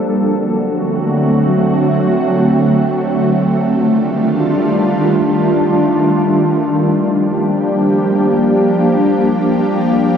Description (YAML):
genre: hip hop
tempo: free time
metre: none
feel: none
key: G minor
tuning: A4 = 441 Hz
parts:
  - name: ethereal airy pad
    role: solo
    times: 0.0-10.2 s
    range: D3 to G4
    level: -12 LUFS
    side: equal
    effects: ensemble chorus, built-in reverb, low-pass filter, tape echo
room: moderate lush hall reverb, RT60 2.6 s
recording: none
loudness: -12 LUFS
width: side -8 dB against mid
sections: 0.0-6.8 A section; 6.8-10.2 B section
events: filter sweep on ambient pad 0.0-6.8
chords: 0.1 D7; 3.4 Ebmaj9#11; 6.8 Gm7